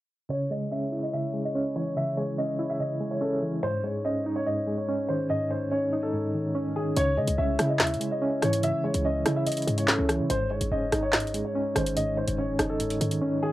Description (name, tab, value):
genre	hip hop, drill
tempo	144 BPM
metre	4/4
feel	half-time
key	C# minor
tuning	A4 = 440 Hz
part	dark concert grand piano	melody	0.3-13.5 s	G#4 to E5	-30 LUFS	equal	low-pass filter, tape echo
part	soft electric-piano-like synth keys	accompaniment	0.3-13.5 s	G#2 to E4	-28 LUFS	right 1 dB	chorus, tremolo, low-pass filter
part	glass harmonica	sustained chords	0.5-13.5 s	C#4 to C#5	-37 LUFS	left 4 dB	stereo widening, low-pass filter
part	short 808-style bass	bass	7.0-13.2 s	F#1 to C#3	-30 LUFS	equal	none
part	drill drum kit	drums	7.0-13.2 s	handclaps, hi-hat, rim click, snare drum	-27 LUFS	equal	cassette tape
room	little or no reverb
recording	home recording on cassette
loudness	-25 LUFS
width	side -15 dB against mid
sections	0.3-7.0 A section; 7.0-13.5 B section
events	filter sweep 0.3-7.0; drums muted 13.2-13.5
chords	0.3 C#m; 3.6 G#sus4; 7.0 C#m; 10.3 G#sus4